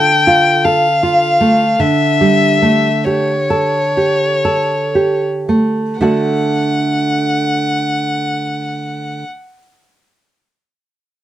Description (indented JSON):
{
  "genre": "romantic duo for violin and classical guitar",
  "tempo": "36-53 BPM",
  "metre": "3/4",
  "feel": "rubato",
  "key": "unclear",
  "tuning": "A4 = 440 Hz",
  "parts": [
    { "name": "rich violin", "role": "melody", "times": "0.0-9.2 s", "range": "C#5 to G5", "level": "-15 LUFS", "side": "left 3 dB", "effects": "none" },
    { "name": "nylon-string guitar", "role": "accompaniment", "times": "0.0-9.2 s", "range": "D3 to F#5", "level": "-15 LUFS", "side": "right 2 dB", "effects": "none" }
  ],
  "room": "light reverb",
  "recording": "dark, warm production",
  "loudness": "-12 LUFS",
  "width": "side -12 dB against mid",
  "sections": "0.0-6.0 A section; 6.0-10.6 B section",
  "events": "slowing down 0.0-6.0",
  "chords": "0.0 Dm; 1.8 A7/D; 6.0 D"
}